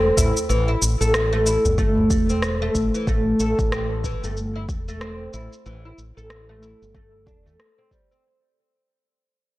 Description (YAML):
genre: organic downtempo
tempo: 93 BPM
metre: 4/4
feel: swing 59% on 16ths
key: A minor pentatonic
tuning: A4 = 439 Hz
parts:
  - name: oud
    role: arpeggios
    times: 0.0-8.2 s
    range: E3 to A4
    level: -22 LUFS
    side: equal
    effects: low-pass filter, analog delay
  - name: fretless electric bass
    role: bass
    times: 0.0-7.6 s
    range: E1 to E2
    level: -25 LUFS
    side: equal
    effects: tube saturation
  - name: electronic cabasa and rim click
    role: drums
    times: 0.2-8.2 s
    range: none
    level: -27 LUFS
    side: equal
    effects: low-pass filter on snare, low-pass filter on perc, low-pass filter on room
  - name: udu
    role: percussion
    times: 0.2-2.1 s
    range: none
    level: -26 LUFS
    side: equal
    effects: none
  - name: electronic kick drum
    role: drums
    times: 1.8-8.1 s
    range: none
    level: -25 LUFS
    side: equal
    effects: overdrive
room: light reverb, digital ambience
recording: dry, gritty hardware recording, transformer saturation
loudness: -19 LUFS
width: side -17 dB against mid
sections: 0.0-8.2 A section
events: fade-out 0.0-8.2; filter sweep on drum 0.0-8.2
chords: 0.0 A7(no3)